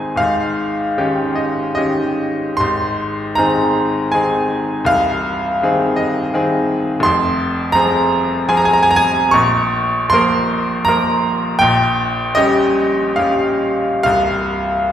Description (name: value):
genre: classical, romantic nocturne for solo piano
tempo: 63-87 BPM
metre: 3/4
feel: rubato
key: Ab major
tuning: A4 = 440 Hz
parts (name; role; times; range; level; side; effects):
- bright grand piano; solo; 0.0-14.9 s; C1 to Db6; -14 LUFS; equal; none
room: wet recital hall reverb, RT60 1.3 s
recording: heard from further back in the room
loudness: -14 LUFS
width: side -10 dB against mid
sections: 0.0-14.9 A section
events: none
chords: 0.2 Eb7/Ab; 2.6 Ab; 4.9 Ab/C; 7.0 Fm; 9.4 Bbm; 11.6 Gdim/Bb; 14.1 N.C.